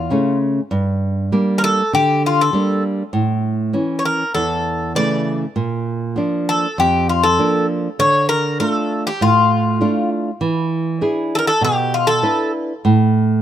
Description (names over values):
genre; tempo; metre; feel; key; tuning
greek folk, Greek bouzouki band; 99 BPM; 4/4; straight; unclear; A4 = 439 Hz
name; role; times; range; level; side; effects
Greek bouzouki; melody; 0.0-12.5 s; F4 to D5; -17 LUFS; left 2 dB; none
nylon-string guitar; accompaniment; 0.0-13.4 s; E2 to B4; -17 LUFS; right 2 dB; none
room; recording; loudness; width
little or no reverb; close, detailed microphones; -15 LUFS; side -10 dB against mid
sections
0.0-13.4 A section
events
none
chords
0.0 A; 0.7 Gm; 3.1 A; 5.6 Bb; 8.0 Dm; 10.4 E7; 12.9 N.C.